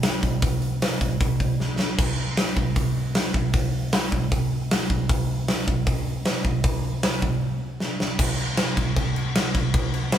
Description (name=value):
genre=punk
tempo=155 BPM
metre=4/4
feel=straight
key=none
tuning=none
part: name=big rock drum kit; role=drums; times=0.0-10.2 s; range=crash cymbal, hi-hat, kick drum, snare drum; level=-21 LUFS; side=equal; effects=none
room=light reverb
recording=band playing live in one room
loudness=-21 LUFS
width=side -10 dB against mid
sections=0.0-2.0 A section; 2.0-8.2 B section; 8.2-10.2 C section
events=drum fill 1.6-2.0, 7.8-8.2; break 7.4-8.2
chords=none